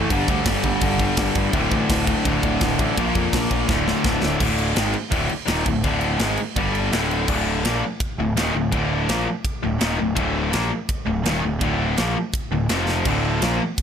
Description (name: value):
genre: heavy metal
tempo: 167 BPM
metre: 4/4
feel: straight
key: D minor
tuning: A4 = 440 Hz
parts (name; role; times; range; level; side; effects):
- fuzz guitar; riff; 0.0-4.4, 13.1-13.6 s; D2 to Bb3; -26 LUFS; equal; distortion
- tight distorted guitar; riff; 0.0-13.6 s; D2 to Bb3; -24 LUFS; left 11 dB; distortion
- tight distorted guitar; riff; 0.0-13.6 s; D2 to Bb3; -26 LUFS; right 12 dB; distortion
- fuzz picked electric bass; bass; 0.0-13.6 s; D1 to F2; -26 LUFS; equal; overdrive
- tight metal drum kit; drums; 0.1-13.8 s; crash cymbal, kick drum, ride cymbal, snare drum; -25 LUFS; equal; none
room: little or no reverb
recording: none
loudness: -19 LUFS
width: side -8 dB against mid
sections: 0.0-4.4 A section; 4.4-7.3 B section; 7.3-13.8 C section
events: drum fill 3.7-4.4, 12.9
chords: 0.1 G5; 1.5 D5; 3.0 Bb5; 3.7 D5; 6.6 G5; 6.9 D5; 7.3 Dm; 12.7 F5; 13.1 Dm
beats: | 0.10 0.46 0.82 1.18 | 1.54 1.90 2.25 2.61 | 2.97 3.33 3.69 4.05 | 4.41 4.77 5.13 5.49 | 5.84 6.21 6.57 6.92 | 7.29 7.64 8.01 8.37 | 8.73 9.09 9.45 9.81 | 10.17 10.53 10.89 11.25 | 11.62 11.98 12.34 12.70 | 13.06 13.42 13.78